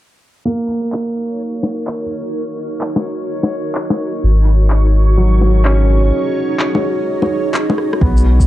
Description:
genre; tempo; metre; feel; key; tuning
future garage; 127 BPM; 4/4; swing 64% on 16ths; unclear; A4 = 440 Hz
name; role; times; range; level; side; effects
granular cloud pad; sustained chords; 1.2-8.5 s; D#4 to D#5; -21 LUFS; equal; built-in reverb, sidechain pumping
felt-muted upright piano; accompaniment; 0.5-8.5 s; F#3 to C#4; -21 LUFS; right 2 dB; sidechain pumping, analog delay
backwards swelling texture; texture; 1.3-8.0 s; C#5; -29 LUFS; equal; built-in reverb
electronic handclaps, bongos, rim click and shaker; drums; 0.9-8.5 s; none; -19 LUFS; left 2 dB; overdrive, vintage 12-bit sampler grit
soft dub sub bass; bass; 4.2-8.5 s; G#1 to B1; -11 LUFS; equal; sidechain pumping
electronic kick drum; drums; 8.0-8.5 s; none; -13 LUFS; equal; overdrive, vintage 12-bit sampler grit
room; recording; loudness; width
light reverb; dark, warm production, low-pass filter; -14 LUFS; side -14 dB against mid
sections
0.5-8.0 A section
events
filter sweep 0.5-8.0; break 6.1-8.0; drum fill 7.8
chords
0.5 F#6; 4.2 G#5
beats
| 0.45 0.93 1.40 1.87 | 2.34 2.82 3.29 3.76 | 4.23 4.71 5.18 5.65 | 6.12 6.60 7.07 7.54 | 8.01

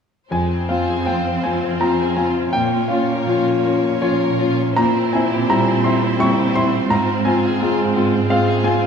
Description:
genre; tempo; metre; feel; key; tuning
classical, romantic movement for piano and orchestra; 82 BPM; 3/4; uneven beats, rubato; F minor; A4 = 440 Hz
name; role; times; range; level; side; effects
clear grand piano; melody; 0.3-8.9 s; F2 to Db6; -17 LUFS; left 2 dB; none
rich studio violin section; second line; 0.3-8.9 s; Ab3 to Db5; -27 LUFS; left 3 dB; none
warm studio viola section; accompaniment; 0.3-8.9 s; Bb3 to F4; -26 LUFS; right 2 dB; none
warm studio cello section; bass; 0.3-8.9 s; F2 to Bb2; -24 LUFS; right 7 dB; none
room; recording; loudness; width
moderate scoring stage reverb, RT60 1.7 s; none; -16 LUFS; side -6 dB against mid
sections
0.3-8.9 A section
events
none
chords
0.3 Fm; 2.5 Bbm; 4.8 C7/Bb; 6.9 Fm/Ab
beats
| 0.31 1.07 1.81 | 2.53 3.27 4.03 | 4.78 5.50 6.21 | 6.91 7.62 8.30

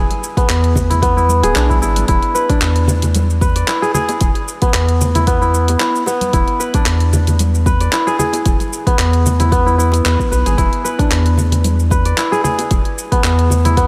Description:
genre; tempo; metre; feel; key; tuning
organic downtempo; 113 BPM; 4/4; swing 55% on 16ths; unclear; A4 = 440 Hz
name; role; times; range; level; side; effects
kora; arpeggios; 0.0-13.9 s; B3 to D5; -19 LUFS; equal; tape echo
round analog bass; bass; 0.0-13.9 s; D1 to E2; -17 LUFS; equal; tube saturation, sidechain pumping
deep house drum kit; drums; 0.1-13.9 s; handclaps, hi-hat, shaker; -25 LUFS; equal; overdrive
congas and bongos; percussion; 0.1-13.7 s; none; -26 LUFS; equal; none
electronic kick drum; drums; 0.4-13.9 s; none; -19 LUFS; equal; overdrive
room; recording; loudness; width
light reverb; none; -15 LUFS; mono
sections
0.0-13.9 A section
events
none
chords
0.0 E7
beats
0.49 1.02 1.56 | 2.09 2.62 3.15 3.68 | 4.21 4.74 5.27 5.80 | 6.33 6.87 7.40 7.93 | 8.46 8.99 9.52 10.05 | 10.58 11.11 11.64 12.18 | 12.71 13.24 13.77

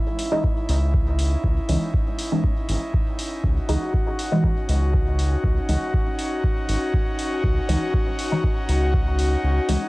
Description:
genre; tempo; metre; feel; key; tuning
dub techno; 120 BPM; 4/4; straight; C# minor; A4 = 441 Hz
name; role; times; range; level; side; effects
airy breathy pad; sustained chords; 0.0-9.9 s; C#4 to F#4; -27 LUFS; left 1 dB; chorus, sidechain pumping, cassette tape
electronic hi-hat; drums; 0.2-9.8 s; none; -35 LUFS; equal; cassette tape
filtered dub chord stab; stabs; 0.3-9.8 s; E3 to D#4; -27 LUFS; equal; phaser, sidechain pumping, cassette tape, dub echo
electronic kick drum; drums; 0.4-9.0 s; none; -23 LUFS; equal; cassette tape
round analog bass; bass; 0.7-9.8 s; G#1 to C#2; -21 LUFS; equal; sidechain pumping
room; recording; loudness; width
light reverb, digital ambience; home recording on cassette; -20 LUFS; side -20 dB against mid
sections
0.0-9.9 A section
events
filter sweep on synth stab 0.0-9.9; kick drops out 9.4-9.9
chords
0.0 C#madd9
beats
0.44 0.94 | 1.44 1.94 2.44 2.94 | 3.44 3.94 4.44 4.94 | 5.44 5.94 6.44 6.94 | 7.44 7.94 8.44 8.94 | 9.44

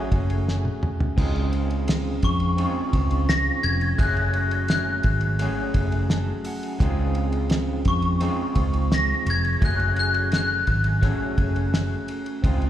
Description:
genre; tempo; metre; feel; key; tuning
indie pop, bedroom pop; 85 BPM; 4/4; straight; Db major; A4 = 440 Hz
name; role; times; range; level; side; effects
glockenspiel with brass mallets; melody; 0.0-11.4 s; Db6 to Bb6; -26 LUFS; left 3 dB; ensemble chorus, slapback echo, tape echo
barky tine electric piano; accompaniment; 0.0-12.7 s; A3 to A5; -34 LUFS; right 4 dB; overdrive, medium tremolo, slapback echo
electric guitar through a small old amp; accompaniment; 0.0-12.7 s; Db3 to Ab4; -30 LUFS; equal; analog chorus, vibrato effect
vintage muted fingered electric bass; bass; 0.1-12.7 s; F1 to F2; -24 LUFS; equal; none
cloth-damped thuddy drum kit; drums; 0.1-12.7 s; crash cymbal, hi-hat, kick drum, ride cymbal, snare drum, toms; -25 LUFS; equal; none
room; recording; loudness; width
small room reverb; live gig heard through the venue's PA, club reverb; -20 LUFS; side -11 dB against mid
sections
0.0-1.2 A section; 1.2-12.7 A section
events
drum fill 0.5-1.2; tine electric piano fill 5.8-6.8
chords
0.0 Gbmadd9; 1.2 Dbmaj7; 4.0 Gbmadd9; 6.8 Dbmaj7; 9.6 Gbmadd9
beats
0.47 | 1.17 1.88 2.58 3.29 | 3.99 4.69 5.40 6.10 | 6.81 7.51 8.21 8.92 | 9.62 10.33 11.03 11.73 | 12.44

